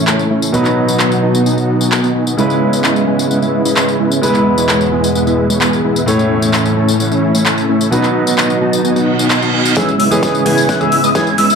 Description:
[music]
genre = EDM, festival progressive house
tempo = 130 BPM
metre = 4/4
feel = straight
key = unclear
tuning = A4 = 438 Hz
[part]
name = clear grand piano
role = accompaniment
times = 0.0-11.3 s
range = A2 to C#5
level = -17 LUFS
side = right 1 dB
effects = sidechain pumping, dub echo
[part]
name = lush unison pad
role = sustained chords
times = 0.0-11.6 s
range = E2 to E4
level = -18 LUFS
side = equal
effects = chorus, sidechain pumping
[part]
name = dense compressed supersaw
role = riff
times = 0.0-11.6 s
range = G#3 to A5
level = -15 LUFS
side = equal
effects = sidechain pumping, low-pass filter, dub echo
[part]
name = big-room dance drum kit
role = drums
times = 0.1-11.6 s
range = handclaps, hi-hat, snare drum, tambourine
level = -19 LUFS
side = left 1 dB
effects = high-pass filter on cymbals, high-pass filter on perc, high-pass filter on snare, high-pass filter on hats, high-pass filter on room
[part]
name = reverse cymbal and riser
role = sound effects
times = 9.0-11.6 s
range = none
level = -21 LUFS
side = right 5 dB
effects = none
[part]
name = wide unison lead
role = arpeggios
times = 9.8-11.6 s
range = D#6 to G#6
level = -15 LUFS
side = left 1 dB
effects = wide subtle chorus, sidechain pumping, dub echo
[part]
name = electronic kick drum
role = drums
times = 9.8-11.2 s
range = none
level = -21 LUFS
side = left 1 dB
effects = high-pass filter on kick
[sound]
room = moderate digital room reverb, RT60 1.1 s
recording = dark, warm production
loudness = -11 LUFS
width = side -6 dB against mid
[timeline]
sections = 0.0-9.8 A section; 9.8-11.6 B section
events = reverse cymbal 9.0-9.8; build-up 9.8-11.6; drum fill 9.8-11.6; filter sweep on supersaw synth 9.8-11.6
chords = 0.0 A; 0.5 B; 2.4 C#m7; 4.2 E; 6.1 A; 7.9 B; 9.8 C#m7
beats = 0.07 | 0.54 1.00 1.46 1.92 | 2.38 2.84 3.31 3.77 | 4.23 4.69 5.15 5.61 | 6.07 6.54 7.00 7.46 | 7.92 8.38 8.84 9.30 | 9.77 10.23 10.69 11.15

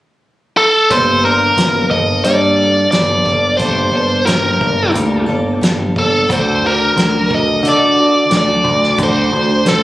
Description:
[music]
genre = folk rock and heartland rock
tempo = 89 BPM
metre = 4/4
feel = straight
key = G harmonic minor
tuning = A4 = 439 Hz
[part]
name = biting lead guitar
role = melody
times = 0.6-9.8 s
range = A4 to Eb5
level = -13 LUFS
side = equal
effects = overdrive, tape echo
[part]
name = picked steel-string acoustic guitar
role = accompaniment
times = 0.9-9.8 s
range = D3 to A4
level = -21 LUFS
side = left 2 dB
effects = none
[part]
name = picked electric bass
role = bass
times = 0.9-9.8 s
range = G1 to D3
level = -17 LUFS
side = right 1 dB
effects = none
[part]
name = natural country drum kit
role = drums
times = 0.9-9.8 s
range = hi-hat, kick drum, snare drum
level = -19 LUFS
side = equal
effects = none
[sound]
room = moderate large studio reverb, RT60 0.8 s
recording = recorded on a phone in the room, club reverb, compression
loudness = -11 LUFS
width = side -16 dB against mid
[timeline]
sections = 0.9-9.8 A section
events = none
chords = 0.0 N.C.; 0.9 Gmadd9; 6.3 D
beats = 0.25 | 0.92 1.59 2.26 2.94 | 3.61 4.28 4.95 5.62 | 6.30 6.97 7.64 8.32 | 8.99 9.67

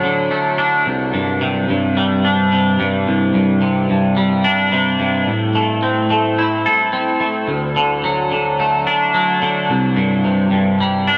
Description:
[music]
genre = rock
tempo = 109 BPM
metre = 4/4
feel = straight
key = C lydian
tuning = A4 = 435 Hz
[part]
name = twangy electric guitar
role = solo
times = 0.0-11.2 s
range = C2 to A4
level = -16 LUFS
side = equal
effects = lush chorus, diffuse ambient delay
[sound]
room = wet huge ambient reverb, RT60 8.0 s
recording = dreamy mix soaked in reverb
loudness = -17 LUFS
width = mono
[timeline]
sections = 0.9-11.2 A section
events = none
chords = 0.0 D; 0.9 Csus2; 5.3 Am; 7.5 D; 9.7 C5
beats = 0.31 | 0.86 1.41 1.97 2.52 | 3.07 3.62 4.17 4.72 | 5.28 5.83 6.38 6.93 | 7.48 8.04 8.59 9.14 | 9.69 10.25 10.80

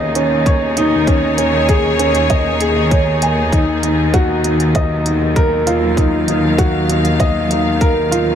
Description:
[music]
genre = piano and strings electronica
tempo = 98 BPM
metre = 4/4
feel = straight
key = Eb minor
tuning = A4 = 439 Hz
[part]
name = rich symphonic string section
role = sustained chords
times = 0.0-8.3 s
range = Eb3 to F5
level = -19 LUFS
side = equal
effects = sidechain pumping
[part]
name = dark upright piano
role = riff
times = 0.0-8.3 s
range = Db4 to Ab5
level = -16 LUFS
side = right 1 dB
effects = tape echo
[part]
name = clear chamber cello section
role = bass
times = 0.0-8.3 s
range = Eb2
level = -19 LUFS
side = left 1 dB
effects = tube saturation, sidechain pumping
[part]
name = electronic hi-hat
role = drums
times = 0.2-8.2 s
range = none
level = -25 LUFS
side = right 2 dB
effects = none
[part]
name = electronic kick drum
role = drums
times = 0.5-7.9 s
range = none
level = -15 LUFS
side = equal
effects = none
[sound]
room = light reverb, small room ambience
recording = none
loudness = -12 LUFS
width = side -9 dB against mid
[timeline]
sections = 0.0-8.3 A section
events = none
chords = 0.0 Dbsus2/Eb; 3.5 Ebmadd9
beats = 0.46 | 1.08 1.69 2.30 2.91 | 3.53 4.14 4.75 5.36 | 5.97 6.59 7.20 7.81

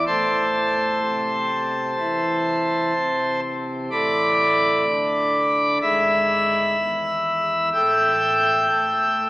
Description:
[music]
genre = classical, chorale-style piece for pipe organ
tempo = 62 BPM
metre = 4/4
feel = rubato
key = A minor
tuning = A4 = 440 Hz
[part]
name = pipe organ, plenum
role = solo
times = 0.0-9.3 s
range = G#1 to G6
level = -18 LUFS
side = equal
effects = none
[sound]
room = wet cathedral reverb, RT60 5.2 s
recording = AM radio sound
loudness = -18 LUFS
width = side -20 dB against mid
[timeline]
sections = 0.0-9.3 A section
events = none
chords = 0.1 Am; 3.9 Asus24; 5.8 E/G#; 7.7 A5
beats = | 0.07 1.03 1.99 2.96 | 3.92 4.87 5.83 6.79 | 7.73 8.70

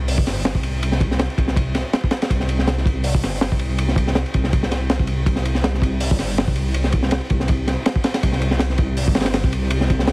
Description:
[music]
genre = drum and bass, jungle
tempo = 162 BPM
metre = 4/4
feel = swing 54% on 16ths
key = unclear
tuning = A4 = 440 Hz
[part]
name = dark detuned saw bass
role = bass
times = 0.0-10.1 s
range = G1 to C2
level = -21 LUFS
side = equal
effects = none
[part]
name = crunchy breakbeat drum kit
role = drums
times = 0.1-10.1 s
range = hi-hat, kick drum, ride cymbal, snare drum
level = -19 LUFS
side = equal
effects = none
[sound]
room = little or no reverb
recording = heavily compressed radio sound, vinyl crackle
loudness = -17 LUFS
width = side -27 dB against mid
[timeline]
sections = 0.0-10.1 A section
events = none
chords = none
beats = 0.08 0.45 | 0.82 1.19 1.56 1.93 | 2.30 2.67 3.04 3.41 | 3.79 4.16 4.53 4.90 | 5.27 5.64 6.01 6.38 | 6.75 7.12 7.49 7.86 | 8.23 8.60 8.97 9.34 | 9.71 10.08

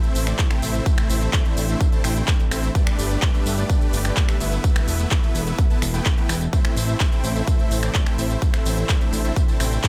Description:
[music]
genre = EDM, festival progressive house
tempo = 127 BPM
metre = 4/4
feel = straight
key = A minor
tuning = A4 = 440 Hz
[part]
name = lush unison pad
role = sustained chords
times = 0.0-9.9 s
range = B2 to A4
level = -34 LUFS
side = equal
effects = chorus, sidechain pumping
[part]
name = supersaw chords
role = riff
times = 0.0-9.9 s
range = A3 to A5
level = -30 LUFS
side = equal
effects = sidechain pumping, dub echo
[part]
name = big-room dance drum kit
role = drums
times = 0.0-9.9 s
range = finger snaps, handclaps, hi-hat, tambourine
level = -30 LUFS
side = equal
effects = none
[part]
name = fat analog bass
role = bass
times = 0.2-9.8 s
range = E1 to A1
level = -25 LUFS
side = equal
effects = tube saturation, sidechain pumping
[part]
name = electronic kick drum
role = drums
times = 0.4-9.9 s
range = none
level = -22 LUFS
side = equal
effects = none
[sound]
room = little or no reverb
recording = none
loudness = -21 LUFS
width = mono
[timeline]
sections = 0.0-9.9 A section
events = none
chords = 0.0 Am; 2.8 Gadd9; 4.6 Esus4; 6.5 Am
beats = 0.39 | 0.86 1.33 1.81 2.28 | 2.75 3.22 3.69 4.17 | 4.64 5.11 5.58 6.06 | 6.53 7.00 7.47 7.95 | 8.42 8.89 9.37 9.84

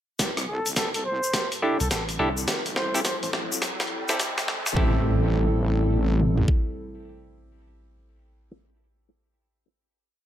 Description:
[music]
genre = glitch hop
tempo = 105 BPM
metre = 4/4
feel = swing 63% on 16ths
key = A minor pentatonic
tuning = A4 = 441 Hz
[part]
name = dark analog pad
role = sustained chords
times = 0.2-7.8 s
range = G3 to A4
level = -32 LUFS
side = equal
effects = wide subtle chorus, sidechain pumping
[part]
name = wobble bass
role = bass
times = 0.2-6.4 s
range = A1 to C2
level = -25 LUFS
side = equal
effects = chorus, tube saturation, high-pass filter
[part]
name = boom bap sampler-style drum kit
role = drums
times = 0.2-4.7 s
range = hi-hat, rim click, snare drum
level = -28 LUFS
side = equal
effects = high-pass filter on snare, high-pass filter on hats, high-pass filter on room
[part]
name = drum and bass drum kit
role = drums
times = 0.2-6.6 s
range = kick drum, toms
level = -25 LUFS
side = equal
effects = overdrive, high-pass filter on kick, high-pass filter on toms
[part]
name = tube shaker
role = percussion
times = 0.2-4.7 s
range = none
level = -31 LUFS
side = left 4 dB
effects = none
[part]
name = riser and impact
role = sound effects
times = 1.7-8.6 s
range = none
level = -36 LUFS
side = equal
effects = none
[part]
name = dark trumpet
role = melody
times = 0.5-3.3 s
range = A4 to C5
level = -31 LUFS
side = equal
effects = tape echo
[part]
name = bright clav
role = stabs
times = 1.6-8.5 s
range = C4 to A4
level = -29 LUFS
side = right 1 dB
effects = vintage 12-bit sampler grit, sidechain pumping, low-pass filter, tape echo
[part]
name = rubbery square bass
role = bass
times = 1.8-4.7 s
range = A1 to C2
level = -31 LUFS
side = equal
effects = tube saturation
[sound]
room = little or no reverb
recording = high-pass filter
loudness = -22 LUFS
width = side -11 dB against mid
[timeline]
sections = 0.2-4.8 build; 4.8-7.1 final chord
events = build-up 0.2-4.8; drum fill 0.2-4.8; filter sweep on analog synth pad 0.2-4.8; riser 1.7-4.8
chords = 0.2 C6; 2.5 Am7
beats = | 0.20 0.77 1.34 1.91 | 2.48 3.05 3.62 4.20 | 4.77 5.34 5.91 6.48

